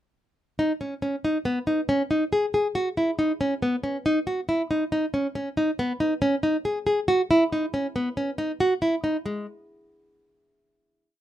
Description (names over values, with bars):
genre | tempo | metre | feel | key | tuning
contemporary instrumental, contemporary | 139 BPM | 5/4 | straight | G# minor | A4 = 441 Hz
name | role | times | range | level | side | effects
nylon-string guitar | solo | 0.6-9.5 s | G#3 to G#4 | -22 LUFS | equal | none
room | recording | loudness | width
light reverb | close, detailed microphones | -23 LUFS | side -12 dB against mid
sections
0.6-9.2 climax; 9.2-11.2 final note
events
none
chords
none